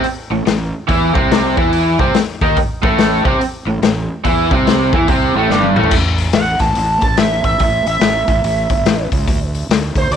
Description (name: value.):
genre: blues rock power trio and southern rock.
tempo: 143 BPM.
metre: 4/4.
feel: swing 63% on 8ths.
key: unclear.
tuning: A4 = 441 Hz.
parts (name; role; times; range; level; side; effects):
raw garage guitar; riff; 0.0-5.9 s; G2 to E4; -15 LUFS; right 1 dB; overdrive.
fuzz fingered electric bass; bass; 0.0-10.2 s; G1 to E2; -20 LUFS; right 1 dB; overdrive.
raw garage drum kit; drums; 0.0-10.2 s; crash cymbal, hi-hat, kick drum, snare drum, toms; -16 LUFS; left 2 dB; none.
lead guitar through a small cranked amp; melody; 6.3-10.2 s; C5 to A5; -17 LUFS; right 2 dB; wah, overdrive, tape echo.
room: light reverb, small room reverb.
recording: 1960s-style stereo.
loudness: -12 LUFS.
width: side -8 dB against mid.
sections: 0.0-5.9 A section; 5.9-10.2 B section.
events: drum fill 5.5-5.9; lead electric guitar solo 5.9-10.2.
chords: 0.0 A5; 9.3 N.C..